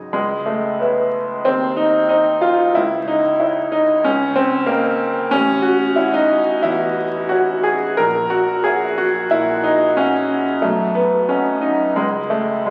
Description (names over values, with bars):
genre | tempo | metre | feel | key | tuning
classical, romantic character piece for solo piano | 91 BPM | 4/4 | rubato | C# minor | A4 = 440 Hz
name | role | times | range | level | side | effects
clear grand piano | solo | 0.0-12.7 s | A1 to G5 | -18 LUFS | equal | none
room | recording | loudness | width
wet recital hall reverb, RT60 1.4 s | very old 78 rpm record, vinyl crackle | -18 LUFS | mono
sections
0.0-12.7 A section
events
none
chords
0.2 C#m; 1.5 Cmadd11/Eb; 2.8 C#m; 4.0 D#7/C#; 5.3 F#m7/A; 8.0 F#7/A#; 10.6 B; 12.0 C#5